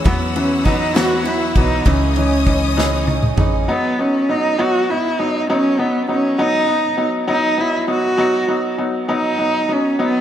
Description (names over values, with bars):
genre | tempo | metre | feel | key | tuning
six-eight pop ballad | 66 BPM (dotted quarters) | 6/8 | straight | unclear | A4 = 441 Hz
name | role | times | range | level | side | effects
warm symphonic string section | sustained chords | 0.0-3.7 s | B4 to E6 | -26 LUFS | left 4 dB | none
picked steel-string acoustic guitar | arpeggios | 0.0-3.7 s | C#3 to B4 | -27 LUFS | right 7 dB | none
upright bass | bass | 0.0-3.7 s | A1 to E2 | -21 LUFS | equal | none
dark cello | melody | 0.1-10.2 s | B3 to F#4 | -18 LUFS | right 1 dB | none
clear upright piano | accompaniment | 0.1-10.2 s | E3 to D#4 | -20 LUFS | left 1 dB | none
unplugged drum kit | drums | 0.1-3.5 s | kick drum, ride cymbal, snare drum, toms | -20 LUFS | equal | gated reverb
room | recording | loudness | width
moderate lush hall reverb, RT60 2.7 s | bright 1980s-style digital production | -15 LUFS | side -10 dB against mid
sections
0.0-3.7 A section; 3.7-10.2 A section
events
drum fill 2.8-3.7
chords
0.1 Esus2; 1.9 C#madd9; 3.7 B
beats
| 0.06 0.96 | 1.86 2.77 | 3.68 4.58 | 5.48 6.38 | 7.28 8.18 | 9.08 9.99